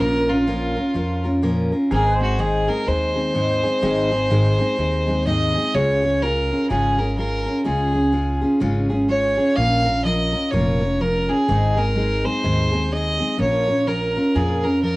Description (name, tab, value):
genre	honky-tonk and classic country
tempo	125 BPM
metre	4/4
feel	swing 60% on 8ths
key	unclear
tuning	A4 = 440 Hz
part	clear fiddle	melody	0.0-15.0 s	F4 to F5	-22 LUFS	equal	cassette tape
part	picked steel-string acoustic guitar	accompaniment	0.0-15.0 s	Ab2 to Bb4	-21 LUFS	equal	cassette tape
part	pedal steel guitar	sustained chords	0.0-5.7 s	F4 to C5	-33 LUFS	right 1 dB	none
part	upright bass	bass	0.0-15.0 s	F1 to F2	-24 LUFS	equal	none
room	moderate booth ambience, RT60 0.2 s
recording	home recording on cassette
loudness	-18 LUFS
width	side -20 dB against mid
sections	0.0-5.7 A section; 5.7-15.0 B section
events	none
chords	0.0 Bbm; 1.9 Ab; 5.7 Db; 9.6 Bbm; 11.5 Ab; 13.4 Bbm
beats	| 0.00 0.48 0.95 1.43 | 1.91 2.39 2.87 3.35 | 3.83 4.30 4.78 5.26 | 5.74 6.22 6.70 7.17 | 7.65 8.13 8.61 9.09 | 9.57 10.04 10.52 11.00 | 11.48 11.96 12.44 12.91 | 13.39 13.87 14.35 14.83